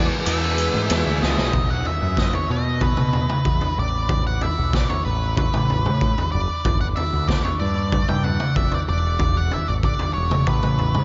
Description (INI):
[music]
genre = psychedelic rock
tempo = 94 BPM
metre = 4/4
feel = straight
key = E mixolydian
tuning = A4 = 440 Hz
[part]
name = octave-fuzz lead guitar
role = melody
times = 0.0-11.0 s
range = B4 to G5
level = -28 LUFS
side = equal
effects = distortion, tape echo
[part]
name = overdriven combo organ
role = sustained chords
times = 0.0-1.5 s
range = G#3 to G#4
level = -39 LUFS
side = equal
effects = none
[part]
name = biting overdriven guitar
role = riff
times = 0.0-1.5 s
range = E3 to E4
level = -30 LUFS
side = equal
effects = flanger
[part]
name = growling picked electric bass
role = bass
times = 0.0-11.0 s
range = E1 to B2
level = -26 LUFS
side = equal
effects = overdrive
[part]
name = raw garage drum kit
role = drums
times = 0.3-11.0 s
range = kick drum, ride cymbal, snare drum, toms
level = -24 LUFS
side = equal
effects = none
[part]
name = congas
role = percussion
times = 0.7-1.5 s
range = none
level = barely audible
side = none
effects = none
[sound]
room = moderate huge ambient reverb, RT60 8.4 s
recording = dreamy mix soaked in reverb, nothing above 7.6 kHz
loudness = -21 LUFS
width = mono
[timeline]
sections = 0.0-1.5 A section; 1.5-11.0 B section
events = drum fill 0.9-1.5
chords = 0.0 E; 1.5 B5; 3.8 Asus2; 6.7 G5; 8.9 E; 10.5 Asus2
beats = 0.26 0.90 | 1.54 2.18 2.82 3.46 | 4.10 4.74 5.38 6.01 | 6.65 7.29 7.93 8.57 | 9.20 9.84 10.48